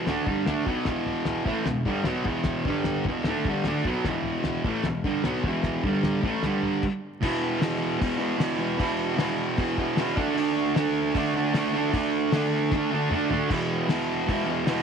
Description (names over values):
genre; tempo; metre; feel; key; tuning
garage rock duo or trio; 152 BPM; 4/4; straight; E minor; A4 = 441 Hz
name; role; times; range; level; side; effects
fuzz guitar; riff; 0.0-14.8 s; E2 to D4; -24 LUFS; right 1 dB; distortion
cloth-damped thuddy drum kit; drums; 0.1-14.8 s; crash cymbal, hi-hat, kick drum, snare drum, toms; -30 LUFS; left 2 dB; none
room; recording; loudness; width
moderate echo chamber reverb, RT60 2.2 s; 1960s-style stereo, vinyl crackle; -23 LUFS; side -6 dB against mid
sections
0.0-7.2 A section; 7.2-14.8 B section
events
stop 6.8-7.2; drum fill 12.7-13.5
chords
0.0 Em; 2.7 G5; 3.1 Em; 5.8 G5; 6.2 A5; 6.4 G5; 6.8 N.C.; 7.2 E5; 10.2 D5; 13.5 E5